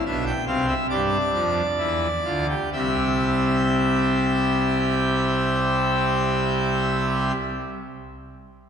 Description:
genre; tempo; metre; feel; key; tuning
classical, baroque-style 3-part fugue for pipe organ; 62-74 BPM; 4/4; straight; C major; A4 = 440 Hz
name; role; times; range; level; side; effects
pipe organ, full organ; solo; 0.0-7.3 s; B1 to G5; -20 LUFS; equal; none
room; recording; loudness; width
wet church reverb, RT60 2.7 s; none; -20 LUFS; side -7 dB against mid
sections
0.0-2.7 A section; 2.7-6.6 B section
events
slowing down 0.0-2.7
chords
0.0 C; 0.9 G5; 2.7 C

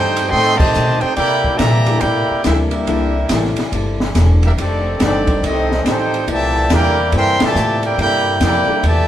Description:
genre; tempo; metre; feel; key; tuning
jazz, big band swing; 141 BPM; 4/4; swing 64% on 8ths; C major; A4 = 440 Hz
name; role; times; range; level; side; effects
bright trumpet section; melody; 0.0-9.1 s; C4 to C6; -17 LUFS; equal; none
clear trombone section; second line; 0.0-9.1 s; Bb2 to G4; -23 LUFS; right 2 dB; none
vintage hollow-body jazz guitar; accompaniment; 0.0-9.1 s; F2 to A4; -26 LUFS; left 4 dB; none
mellow saxophone section; sustained chords; 0.0-9.1 s; C3 to G4; -29 LUFS; left 2 dB; none
upright bass; bass; 0.0-9.1 s; E1 to C3; -18 LUFS; equal; none
open jazz drum kit; drums; 0.2-9.0 s; crash cymbal, hi-hat, kick drum, ride cymbal, snare drum; -21 LUFS; equal; none
dark baby grand piano; accompaniment; 1.9-8.8 s; G3 to Bb4; -23 LUFS; left 3 dB; none
room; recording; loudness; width
moderate studio reverb, RT60 0.6 s; band playing live in one room, lossy compression artefacts; -13 LUFS; side -11 dB against mid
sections
0.0-9.1 A section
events
band accent 0.5, 7.3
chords
0.0 F13; 1.2 C13; 4.6 F13; 6.3 C13

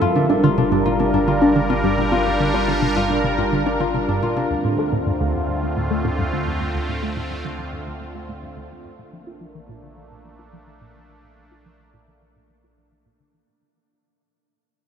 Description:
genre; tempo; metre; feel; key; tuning
ambient, sequencer-driven space music; 107 BPM; 4/4; straight; unclear; A4 = 440 Hz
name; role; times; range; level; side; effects
sweeping resonant pad; sustained chords; 0.0-13.4 s; D3 to Bb4; -23 LUFS; right 1 dB; chorus
concert harp; arpeggios; 0.0-7.2 s; D4 to F4; -24 LUFS; left 3 dB; auto-pan, tape echo
tight sequenced synth; riff; 0.0-13.4 s; D2 to F4; -22 LUFS; equal; chorus, phaser, tape echo
warm sub bass; bass; 0.0-13.4 s; G1 to D2; -30 LUFS; equal; none
room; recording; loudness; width
wet huge ambient reverb, RT60 7.7 s; none; -18 LUFS; side -7 dB against mid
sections
0.0-13.5 A section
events
fade-out 0.0-13.5; filter sweep on synth arpeggio sound 0.0-13.5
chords
0.0 Gm7; 4.5 Dm7; 9.0 Bbmaj7

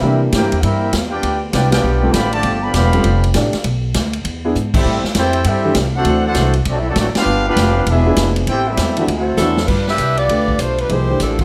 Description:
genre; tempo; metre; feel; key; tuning
jazz, big band swing; 199 BPM; 4/4; swing 63% on 8ths; G major; A4 = 440 Hz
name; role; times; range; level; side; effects
dark trumpet section; melody; 0.0-9.6 s; C4 to B5; -22 LUFS; equal; none
clear trombone section; second line; 0.0-9.5 s; D3 to G4; -24 LUFS; equal; none
warm upright piano; accompaniment; 0.0-11.4 s; E3 to D5; -23 LUFS; equal; none
upright bass; bass; 0.0-11.4 s; E1 to C3; -20 LUFS; equal; none
swinging big-band drum kit; drums; 0.3-11.4 s; crash cymbal, hi-hat, kick drum, ride cymbal, snare drum; -24 LUFS; equal; none
warm saxophone section; melody; 9.4-11.4 s; E3 to E5; -20 LUFS; equal; none
room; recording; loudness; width
moderate large studio reverb, RT60 0.8 s; none; -16 LUFS; mono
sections
0.0-9.7 A section; 9.7-11.4 B section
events
band accent 1.7, 4.7, 7.1; drum fill 4.5-4.8, 9.4-9.7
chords
0.0 C7; 1.2 G7; 3.6 Bm; 4.2 E7; 4.8 Am7; 6.1 D7; 7.3 G7; 7.9 E7b9; 8.5 Am7; 9.1 D9; 9.7 G7; 10.9 C7

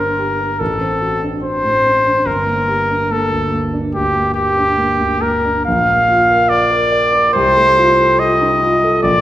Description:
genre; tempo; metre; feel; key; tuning
classical, romantic duo for trumpet and grand piano; 72 BPM; 4/4; rubato; G minor; A4 = 441 Hz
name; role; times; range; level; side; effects
warm trumpet; melody; 0.0-9.2 s; G4 to F5; -13 LUFS; equal; none
dark concert grand piano; accompaniment; 0.0-9.2 s; G1 to D5; -18 LUFS; right 1 dB; none
room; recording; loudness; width
wet recital hall reverb, RT60 1.3 s; none; -12 LUFS; side -13 dB against mid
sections
0.0-9.2 A section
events
none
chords
0.0 Gm; 0.6 D7/A; 2.3 Gm; 5.7 Bb; 7.3 F7/C

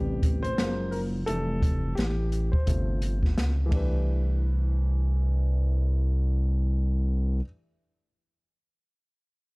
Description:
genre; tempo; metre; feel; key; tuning
hip hop, jazz-hop; 86 BPM; 4/4; swing 61% on 16ths; C major; A4 = 440 Hz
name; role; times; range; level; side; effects
dark concert grand piano; accompaniment; 0.0-7.5 s; C3 to C5; -34 LUFS; left 1 dB; none
smooth synth bass; bass; 0.0-7.4 s; F1 to Db2; -25 LUFS; equal; none
open jazz drum kit; drums; 0.2-3.9 s; hi-hat, kick drum, ride cymbal, snare drum; -27 LUFS; equal; none
room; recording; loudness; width
small room ambience; dry, gritty hardware recording, cassette tape; -24 LUFS; side -30 dB against mid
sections
0.0-4.1 A section; 4.1-6.9 B section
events
grand piano solo 0.0-4.1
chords
0.0 Am9; 0.6 F#maj9; 1.3 Fmaj9; 2.7 G9sus4; 3.7 C69

